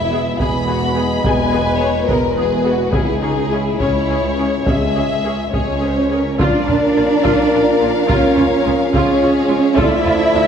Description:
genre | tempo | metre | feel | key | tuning
cinematic, epic orchestral film score | 71 BPM (dotted quarters) | 6/8 | straight | unclear | A4 = 440 Hz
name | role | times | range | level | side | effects
warm symphonic violin section | melody | 0.0-10.5 s | Ab4 to B5 | -22 LUFS | left 4 dB | none
warm symphonic violin section | second line | 0.0-10.5 s | Eb4 to F5 | -23 LUFS | left 3 dB | none
dark French horn section | sustained chords | 0.0-10.5 s | F3 to D5 | -22 LUFS | left 3 dB | none
dark symphonic cello section | bass | 0.0-10.5 s | Db2 to E4 | -19 LUFS | right 3 dB | none
warm studio double bass section | bass | 0.0-10.4 s | E1 to D2 | -25 LUFS | right 3 dB | none
rich symphonic viola section | accompaniment | 0.1-10.4 s | Ab3 to A4 | -24 LUFS | right 1 dB | none
solo taiko drums | drums | 0.4-10.3 s | none | -22 LUFS | equal | none
warm trombone section | sustained chords | 6.4-10.5 s | D3 to Bb3 | -23 LUFS | right 5 dB | none
room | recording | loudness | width
moderate concert hall reverb, RT60 1.9 s | none | -13 LUFS | side -8 dB against mid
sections
0.0-6.4 A section; 6.4-10.5 B section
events
none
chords
0.0 E; 2.9 Dbm; 6.4 Bb; 8.1 Db; 9.8 Dm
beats
0.40 | 1.25 2.09 | 2.94 3.81 | 4.67 5.54 | 6.40 7.25 | 8.10 8.94 | 9.78

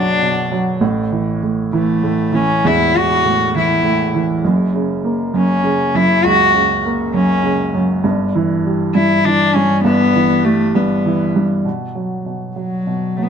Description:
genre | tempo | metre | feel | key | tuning
pop | 66 BPM (dotted quarters) | 6/8 | straight | unclear | A4 = 440 Hz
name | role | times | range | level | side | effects
dark cello | melody | 0.0-13.3 s | F#3 to F#4 | -16 LUFS | left 2 dB | none
warm baby grand piano | accompaniment | 0.0-13.3 s | E1 to A#3 | -16 LUFS | right 2 dB | none
room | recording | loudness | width
moderate echo chamber reverb, RT60 1.2 s | dark, warm production | -13 LUFS | side -7 dB against mid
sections
0.0-11.7 A section; 11.7-13.3 B section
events
none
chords
0.0 Bm; 0.8 A5; 4.4 F#; 8.0 Em/G; 11.7 B5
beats
| 0.82 1.73 | 2.63 3.53 | 4.44 5.34 | 6.24 7.14 | 8.05 8.95 | 9.85 10.76 | 11.66 12.57

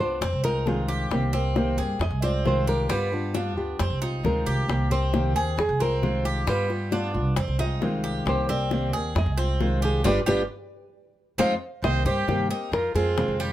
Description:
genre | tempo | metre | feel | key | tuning
latin, Cuban son and guajira | 134 BPM | 4/4 | straight | C minor | A4 = 443 Hz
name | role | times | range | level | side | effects
nylon-string guitar | melody | 0.0-13.4 s | D4 to F5 | -28 LUFS | equal | plate reverb
fingerpicked old ladder-braced acoustic guitar | accompaniment | 0.0-13.5 s | C3 to G4 | -29 LUFS | left 1 dB | none
Cuban tres | arpeggios | 0.0-13.5 s | G3 to Ab4 | -31 LUFS | right 3 dB | none
upright bass | bass | 0.0-13.5 s | G1 to G2 | -27 LUFS | right 1 dB | none
bongos | percussion | 0.2-13.5 s | none | -30 LUFS | left 5 dB | none
bright trumpet | second line | 11.8-13.4 s | F4 to C5 | -32 LUFS | right 6 dB | none
room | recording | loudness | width
light reverb | none | -22 LUFS | side -13 dB against mid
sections
0.0-11.8 A section; 11.8-13.5 B section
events
nylon-string guitar solo 0.0-11.8; band accent 10.1-11.8; drum fill 11.6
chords
0.2 Fm7; 1.1 Cm7; 2.0 Fm7; 2.9 G7; 3.8 Fm7; 4.7 Cm7; 5.6 Fm7; 6.5 G7; 7.4 Fm7; 8.3 Cm7; 9.2 Fm7; 10.1 G7; 10.9 Fm7; 11.8 Cm7; 12.7 Fm7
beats
0.21 0.66 | 1.11 1.56 2.00 2.45 | 2.90 3.35 3.79 4.24 | 4.69 5.13 5.58 6.03 | 6.47 6.92 7.37 7.82 | 8.26 8.71 9.16 9.60 | 10.05 10.50 10.94 11.39 | 11.84 12.28 12.73 13.18

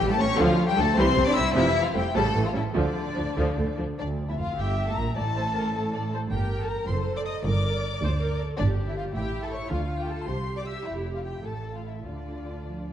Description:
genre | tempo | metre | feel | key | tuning
quick classical-period movement for string orchestra | 96-108 BPM (dotted quarters) | 6/8 | rubato | D minor | A4 = 438 Hz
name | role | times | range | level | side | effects
dark chamber violin section | melody | 0.0-12.9 s | D5 to E6 | -31 LUFS | left 6 dB | none
rich studio violin section | second line | 0.0-12.9 s | D4 to E5 | -32 LUFS | left 3 dB | none
rich chamber viola section | accompaniment | 0.0-12.9 s | C3 to E5 | -30 LUFS | right 1 dB | none
rich chamber cello section | bass | 0.0-12.9 s | D2 to E4 | -32 LUFS | right 2 dB | none
rich studio double bass section | bass | 0.0-12.9 s | F1 to D2 | -29 LUFS | right 2 dB | none
room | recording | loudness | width
wet concert hall reverb, RT60 2.2 s | dark, warm production | -23 LUFS | side -10 dB against mid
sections
0.0-4.0 A section; 4.0-12.9 B section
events
none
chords
0.4 Dm; 1.0 C; 1.6 F; 2.2 A7; 2.8 Dm; 4.6 A5/G; 5.2 Amadd11; 6.3 Gm; 6.9 F#dim7; 7.5 Gm; 8.6 Dmadd11/G (rootless); 9.1 A5; 9.7 Dm; 10.3 C5; 10.8 Fsus2; 11.4 Fmaj7/A; 12.1 Dm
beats
| 0.39 0.97 | 1.55 2.15 | 2.76 3.38 | 3.99 4.58 | 5.16 5.74 | 6.32 6.88 | 7.45 8.02 | 8.59 9.14 | 9.70 10.27 | 10.85 11.44 | 12.05 12.67

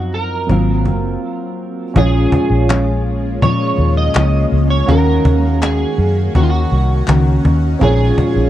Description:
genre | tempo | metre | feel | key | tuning
indie pop, bedroom pop | 82 BPM | 4/4 | straight | Bb minor | A4 = 440 Hz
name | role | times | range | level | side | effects
electric guitar at the edge of break-up | melody | 0.0-8.5 s | F4 to Eb5 | -22 LUFS | right 3 dB | ensemble chorus, tape echo
dark upright piano | accompaniment | 0.0-8.5 s | F3 to F5 | -22 LUFS | right 4 dB | cassette tape
fingerpicked steel-string acoustic guitar | accompaniment | 0.0-8.5 s | Ab2 to Gb4 | -19 LUFS | left 4 dB | lush chorus, vibrato effect
vintage muted fingered electric bass | bass | 0.0-8.5 s | Gb1 to Bb2 | -15 LUFS | equal | none
cajon | drums | 0.1-8.3 s | none | -18 LUFS | equal | vintage 12-bit sampler grit
shimmering ambient pad | sustained chords | 2.9-8.5 s | Eb3 to Gb4 | -25 LUFS | equal | chorus, built-in reverb, phaser
group handclap | percussion | 2.7-7.2 s | none | -27 LUFS | left 8 dB | none
room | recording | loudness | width
light reverb | dark, warm production | -12 LUFS | side -13 dB against mid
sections
0.0-2.0 A section; 2.0-8.5 B section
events
break 1.2-2.0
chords
0.5 Ab13; 2.0 Bbm7; 4.9 Ebm7; 7.8 Bbm7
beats
0.49 1.23 | 1.96 2.69 3.42 4.15 | 4.88 5.62 6.35 7.08 | 7.81

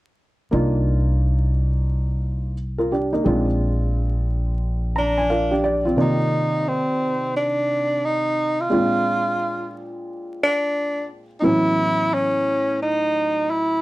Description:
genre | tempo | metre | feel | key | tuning
hip hop | 88 BPM | 4/4 | swing 62% on 16ths | C minor | A4 = 436 Hz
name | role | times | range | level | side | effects
dark upright piano | accompaniment | 0.5-13.8 s | A2 to Bb5 | -23 LUFS | equal | none
upright bass | bass | 0.5-5.9 s | Bb1 to C2 | -21 LUFS | equal | none
breathy tenor saxophone | melody | 5.0-13.8 s | C4 to F4 | -20 LUFS | equal | none
room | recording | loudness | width
light reverb | dark, warm production, vinyl crackle | -19 LUFS | side -18 dB against mid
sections
0.5-6.0 A section; 6.0-13.8 B section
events
upright piano fill 4.6-6.0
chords
0.5 Cm11; 3.3 Bb9; 6.0 Cm11; 8.7 Bb9; 11.4 A69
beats
| 0.53 1.21 1.89 2.57 | 3.25 3.94 4.62 5.30 | 5.98 6.67 7.35 8.03 | 8.71 9.39 10.07 10.76 | 11.44 12.12 12.80 13.48

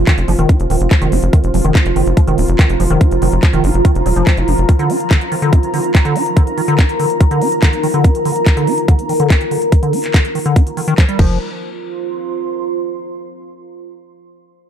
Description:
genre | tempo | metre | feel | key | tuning
psychedelic trance | 143 BPM | 4/4 | straight | unclear | A4 = 440 Hz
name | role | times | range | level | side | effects
pulsing gated texture | sustained chords | 0.0-11.2 s | F3 to F4 | -22 LUFS | right 2 dB | chorus, built-in reverb, sidechain pumping
tight sequencer bass | bass | 0.0-4.7, 11.2-11.4 s | Eb1 to Gb1 | -15 LUFS | equal | none
downlifter | sound effects | 0.0-1.3 s | none | barely audible | none | none
deep dark ambient pad | texture | 0.0-13.0 s | Eb4 to C6 | -20 LUFS | left 1 dB | chorus, built-in reverb, sidechain pumping
liquid acid bass | riff | 0.1-11.4 s | D3 to F4 | -19 LUFS | moving between left 4 dB and right 4 dB | chorus, auto-pan, sidechain pumping, digital delay
drum and bass drum kit | drums | 0.1-11.3 s | crash cymbal, handclaps, hi-hat | -23 LUFS | left 1 dB | none
electronic kick drum | drums | 0.1-11.3 s | none | -10 LUFS | equal | none
room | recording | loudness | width
little or no reverb | none | -11 LUFS | side -9 dB against mid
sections
0.0-11.4 A section; 11.4-13.1 B section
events
filter sweep on acid bass 0.0-11.4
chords
0.0 F5; 4.7 Eb5; 11.2 F5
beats
0.07 0.49 0.91 | 1.33 1.75 2.17 2.59 | 3.01 3.43 3.85 4.27 | 4.69 5.11 5.53 5.95 | 6.37 6.79 7.21 7.62 | 8.04 8.46 8.88 9.30 | 9.72 10.14 10.56 10.98 | 11.40 11.82 12.24 12.66

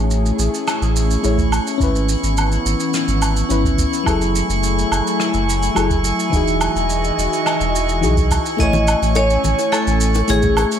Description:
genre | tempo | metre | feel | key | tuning
sunset chillout | 106 BPM | 4/4 | straight | unclear | A4 = 439 Hz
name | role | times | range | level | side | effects
mellow FM electric piano | accompaniment | 0.0-10.8 s | E3 to G#5 | -22 LUFS | moving between left 5 dB and right 1 dB | chorus, auto-pan, low-pass filter, digital delay
airy breathy pad | sustained chords | 0.0-10.8 s | E3 to G#5 | -23 LUFS | left 1 dB | chorus, vintage 12-bit sampler grit
warm sub bass | bass | 0.0-10.6 s | E1 to B1 | -19 LUFS | equal | none
drifting glass-harmonics texture | texture | 0.3-10.8 s | E4 to C#6 | -25 LUFS | right 2 dB | chorus, built-in reverb
vintage brush drum kit | drums | 0.1-10.8 s | hi-hat, rim click, shaker, woodblock | -24 LUFS | right 3 dB | gated reverb
electronic kick drum | drums | 1.4-10.5 s | none | -21 LUFS | equal | none
vibraphone with hard mallets | melody | 8.6-10.7 s | G#4 to D#5 | -20 LUFS | left 1 dB | digital delay
bongos and congas | percussion | 8.6-10.7 s | none | -26 LUFS | left 4 dB | none
room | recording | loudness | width
moderate plate reverb, RT60 1.6 s, studio reverb | bright 1980s-style digital production | -15 LUFS | side -9 dB against mid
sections
0.0-10.8 A section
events
filter sweep on FM electric piano 0.0-10.8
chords
0.0 Amaj7; 1.8 C#m7/G#; 4.1 F#m9; 6.3 Emaj9; 8.6 Amaj7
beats
0.10 0.67 1.24 | 1.80 2.37 2.93 3.50 | 4.07 4.63 5.20 5.76 | 6.33 6.90 7.46 8.03 | 8.59 9.16 9.73 10.29

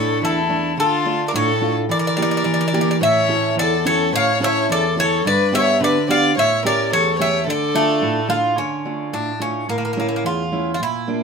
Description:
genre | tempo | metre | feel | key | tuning
greek folk, Greek bouzouki band | 108 BPM | 2/4 | straight | D harmonic minor | A4 = 442 Hz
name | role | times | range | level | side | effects
Greek bouzouki | melody | 0.0-11.2 s | A3 to F5 | -20 LUFS | left 1 dB | none
warm violin | second line | 0.0-8.3 s | E4 to D5 | -21 LUFS | left 4 dB | none
fingerpicked steel-string acoustic guitar | accompaniment | 0.0-11.2 s | E2 to A4 | -21 LUFS | right 2 dB | none
room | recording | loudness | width
moderate studio reverb, RT60 0.6 s | minimal, uncompressed stereo recording | -16 LUFS | side -5 dB against mid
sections
0.0-8.6 A section; 8.6-11.2 B section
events
none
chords
0.0 Asus4; 0.8 Dm; 1.9 Edim; 3.0 A; 5.2 G; 6.4 A7; 7.5 Dm; 9.7 A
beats
0.22 | 0.78 1.34 | 1.90 2.46 | 3.02 3.58 | 4.13 4.69 | 5.25 5.81 | 6.36 6.92 | 7.47 8.03 | 8.59 9.14 | 9.70 10.25 | 10.81

